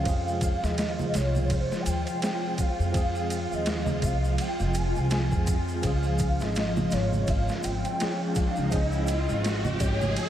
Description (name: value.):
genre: trip hop.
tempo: 83 BPM.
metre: 4/4.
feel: swing 58% on 16ths.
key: F minor.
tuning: A4 = 440 Hz.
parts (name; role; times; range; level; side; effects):
pure breathy sine lead; melody; 0.0-10.3 s; C5 to Ab5; -32 LUFS; equal; ensemble chorus, tape echo.
tine electric piano; accompaniment; 0.0-10.3 s; C3 to Ab4; -34 LUFS; right 1 dB; tremolo, tape echo.
string machine, cellos; sustained chords; 0.0-10.3 s; F3 to F4; -34 LUFS; equal; phaser, ensemble chorus, vintage 12-bit sampler grit.
upright bass; bass; 0.0-10.1 s; F1 to F2; -28 LUFS; equal; none.
bowed-like drone; texture; 0.0-10.3 s; F4; -41 LUFS; right 3 dB; built-in reverb.
boom bap sampler-style drum kit; drums; 0.1-10.3 s; kick drum, ride cymbal, snare drum; -31 LUFS; equal; overdrive.
tube shaker and congas; percussion; 0.1-10.3 s; none; -36 LUFS; right 3 dB; none.
riser; sound effects; 7.5-10.3 s; none; -35 LUFS; right 1 dB; none.
room: moderate huge ambient reverb, RT60 4.6 s.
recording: dreamy mix soaked in reverb.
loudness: -24 LUFS.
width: side -11 dB against mid.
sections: 0.0-10.3 A section.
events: riser 7.5-10.3.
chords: 0.1 Fm; 5.8 Db.